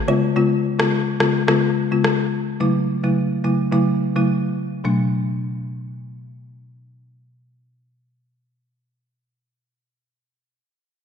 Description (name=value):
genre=afrobeats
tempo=107 BPM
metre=4/4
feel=swing 55% on 16ths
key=D major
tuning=A4 = 439 Hz
part: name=folk marimba with soft mallets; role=accompaniment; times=0.1-8.6 s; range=B2 to E#4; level=-19 LUFS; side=left 2 dB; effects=none
part: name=electronic rim click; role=drums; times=0.8-2.2 s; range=none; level=-23 LUFS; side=left 1 dB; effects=vintage 12-bit sampler grit, gated reverb
room=moderate lush hall reverb, RT60 2.4 s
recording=bright 1980s-style digital production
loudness=-18 LUFS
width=side -7 dB against mid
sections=0.0-4.8 A section; 4.8-7.1 B section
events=none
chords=0.1 C#7; 2.6 F#m7; 4.8 D6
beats=| 0.36 0.92 1.48 2.04 | 2.60 3.16 3.73 4.29 | 4.85 5.41 5.97 6.53